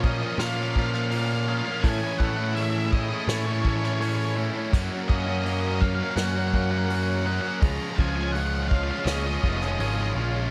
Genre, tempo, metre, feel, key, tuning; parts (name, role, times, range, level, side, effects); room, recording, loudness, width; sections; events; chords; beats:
post-rock; 83 BPM; 4/4; straight; Db major; A4 = 442 Hz
octave-fuzz lead guitar; melody; 0.0-10.1 s; C#5 to Bb5; -34 LUFS; equal; distortion, slapback echo
dark analog pad; sustained chords; 0.0-10.5 s; E4 to Db6; -42 LUFS; equal
glockenspiel with rubber mallets; arpeggios; 0.0-10.5 s; Eb6 to Bb6; -44 LUFS; equal
twangy electric guitar; arpeggios; 0.0-10.5 s; A2 to F4; -38 LUFS; equal; slapback echo
biting overdriven guitar; riff; 0.0-10.5 s; A2 to Gb4; -34 LUFS; equal
distorted electric guitar; riff; 0.0-10.5 s; A2 to Gb4; -36 LUFS; equal; overdrive
fuzz picked electric bass; bass; 0.0-10.5 s; F1 to Bb2; -30 LUFS; equal; overdrive
vintage brush drum kit; drums; 0.0-10.0 s; crash cymbal, hi-hat, kick drum, snare drum; -27 LUFS; equal
light reverb; -25 LUFS; mono
0.0-10.5 A section
0.0 Bbm; 1.8 Amaj7; 4.7 Gbmaj7; 7.6 Db
0.40 1.12 | 1.84 2.56 3.29 4.01 | 4.73 5.45 6.17 6.90 | 7.62 8.34 9.07 9.79